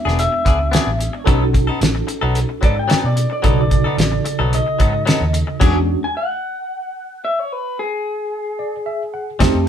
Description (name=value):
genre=straight-eighth soul blues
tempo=111 BPM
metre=4/4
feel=swing 53% on 16ths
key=unclear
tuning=A4 = 444 Hz
part: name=electric guitar through a small old amp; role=melody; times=0.0-9.4 s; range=G#4 to G#5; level=-22 LUFS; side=left 1 dB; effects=none
part: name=tine electric piano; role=accompaniment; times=0.0-9.7 s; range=C#3 to A5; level=-23 LUFS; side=right 2 dB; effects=overdrive, fast stereo tremolo
part: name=direct-recorded clean electric guitar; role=stabs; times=0.1-5.8, 9.4-9.7 s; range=F#3 to A4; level=-24 LUFS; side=left 4 dB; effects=none
part: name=vintage muted fingered electric bass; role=bass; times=0.1-5.9, 9.4-9.7 s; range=E1 to B2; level=-20 LUFS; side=equal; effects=none
part: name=cloth-damped thuddy drum kit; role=drums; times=0.1-5.7, 9.4-9.5 s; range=crash cymbal, hi-hat, kick drum, snare drum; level=-17 LUFS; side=equal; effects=none
room=moderate studio reverb, RT60 0.7 s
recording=band playing live in one room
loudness=-16 LUFS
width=side -9 dB against mid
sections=0.0-9.7 A section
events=stop 5.6-9.4; tine electric piano fill 8.3-9.7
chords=0.0 E7; 1.3 B7; 5.6 E13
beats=0.18 0.73 | 1.27 1.81 2.35 2.90 | 3.44 3.98 4.53 5.07 | 5.61 6.15 6.69 7.24 | 7.78 8.32 8.86 9.40